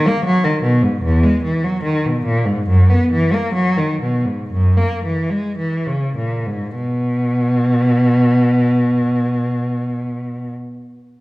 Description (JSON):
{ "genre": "classical, baroque-style suite movement for unaccompanied cello", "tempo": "48-78 BPM", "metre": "4/4", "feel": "rubato", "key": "unclear", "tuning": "A4 = 436 Hz", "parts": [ { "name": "rich cello", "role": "solo", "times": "0.0-10.5 s", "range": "E2 to B3", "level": "-15 LUFS", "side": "equal", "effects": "none" } ], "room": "wet recital hall reverb, RT60 1.8 s", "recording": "dark, warm production", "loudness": "-15 LUFS", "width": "side -20 dB against mid", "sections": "0.0-6.7 A section; 6.7-11.1 B section", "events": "slowing down 0.0-6.7", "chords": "none" }